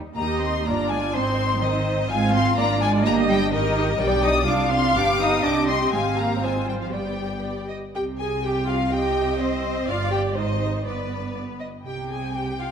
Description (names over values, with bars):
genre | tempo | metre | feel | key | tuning
quick classical-period movement for string orchestra | 124 BPM | 2/4 | rubato | Eb major, C minor from 4.0 s | A4 = 441 Hz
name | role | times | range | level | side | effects
clear studio violin section | melody | 0.2-12.7 s | B4 to Eb6 | -27 LUFS | left 6 dB | none
rich chamber violin section | second line | 0.2-12.7 s | G4 to G5 | -27 LUFS | equal | none
rich chamber viola section | accompaniment | 0.2-12.7 s | B3 to Ab4 | -27 LUFS | right 1 dB | none
rich chamber cello section | bass | 0.2-12.7 s | G2 to Eb4 | -27 LUFS | right 3 dB | none
rich chamber double bass section | bass | 0.2-12.7 s | G1 to Eb2 | -28 LUFS | right 2 dB | none
room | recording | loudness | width
moderate scoring stage reverb, RT60 1.5 s | dark, warm production | -20 LUFS | side -7 dB against mid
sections
0.2-7.9 A section; 7.9-12.7 B section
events
none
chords
0.2 Eb; 0.7 Gm7; 1.1 Ab; 2.1 Fm/Ab; 2.6 Bb7/Ab; 3.1 Eb/G; 4.0 G/B; 4.5 Csus24; 5.0 G; 5.4 Cm; 5.9 Fm/Ab; 6.9 G; 7.9 C5; 9.9 G5; 10.4 Ab; 10.9 G; 11.9 C5